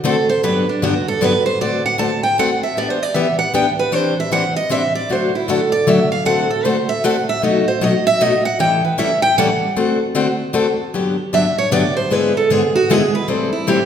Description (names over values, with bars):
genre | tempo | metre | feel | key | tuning
jazz | 154 BPM | 3/4 | swing 62% on 8ths | G major | A4 = 441 Hz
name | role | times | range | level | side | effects
picked plugged-in steel-string acoustic guitar | accompaniment | 0.0-13.8 s | G2 to A4 | -18 LUFS | left 3 dB | none
picked steel-string acoustic guitar | melody | 0.1-13.9 s | D4 to A5 | -17 LUFS | right 2 dB | none
room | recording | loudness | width
wet recital hall reverb, RT60 1.4 s | recorded in a church or concert hall | -14 LUFS | side -8 dB against mid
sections
0.0-1.6 A section; 1.6-10.9 A section; 10.9-13.9 A section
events
steel-string acoustic guitar solo 0.0-10.9, 10.9-13.9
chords
0.4 Gmaj7; 1.6 D7; 2.8 Em7; 3.9 Cadd9/E; 5.1 D; 6.3 D7; 7.4 B7; 8.6 A7; 9.8 D7; 10.9 Gmaj7; 12.1 E7/G#; 13.3 Am7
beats
0.04 | 0.42 0.81 1.20 | 1.59 1.98 2.37 | 2.76 3.15 3.54 | 3.92 4.31 4.70 | 5.09 5.48 5.87 | 6.26 6.65 7.04 | 7.43 7.82 8.21 | 8.60 8.99 9.38 | 9.77 10.16 10.55 | 10.94 11.33 11.72 | 12.11 12.50 12.89 | 13.28 13.67